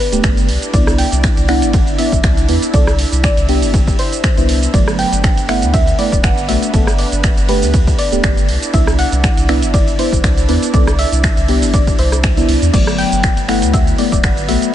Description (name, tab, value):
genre	deep house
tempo	120 BPM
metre	4/4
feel	swing 55% on 16ths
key	unclear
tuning	A4 = 437 Hz
part	soft round pluck	melody	0.0-14.7 s	B4 to G5	-21 LUFS	equal	lush chorus, cassette tape, ping-pong delay
part	warm analog pad	sustained chords	0.0-14.7 s	F#3 to E5	-25 LUFS	right 2 dB	chorus, sidechain pumping
part	mellow FM electric piano	stabs	0.1-14.7 s	F#3 to A4	-19 LUFS	left 1 dB	chorus, phaser, sidechain pumping, tape echo
part	round analog bass	bass	0.1-14.6 s	D1 to E2	-17 LUFS	equal	sidechain pumping
part	punchy analog drum machine	drums	0.1-14.7 s	crash cymbal, finger snaps, hi-hat, ride cymbal, rim click, shaker	-21 LUFS	right 2 dB	none
part	electronic kick drum	drums	0.2-14.3 s	none	-15 LUFS	equal	overdrive
room	light reverb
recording	nothing above 10.3 kHz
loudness	-11 LUFS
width	side -11 dB against mid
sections	0.0-14.7 A section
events	none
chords	0.5 Cmaj9; 4.7 Gmaj7; 8.5 Cmaj9; 12.7 Gmaj7